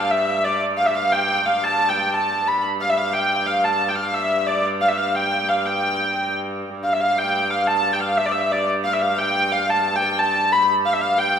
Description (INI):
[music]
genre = medieval dance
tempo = 119 BPM (dotted quarters)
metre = 6/8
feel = straight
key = unclear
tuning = A4 = 440 Hz
[part]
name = rich hurdy-gurdy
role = melody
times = 0.0-11.4 s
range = D5 to B5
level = -18 LUFS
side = equal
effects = none
[part]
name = warm hurdy-gurdy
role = drone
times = 0.0-11.4 s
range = G2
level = -27 LUFS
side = equal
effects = none
[sound]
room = wet recital hall reverb, RT60 1.5 s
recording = recorded in a church or concert hall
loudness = -18 LUFS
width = side -8 dB against mid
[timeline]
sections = 0.0-6.7 A section; 6.7-11.4 A section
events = none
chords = none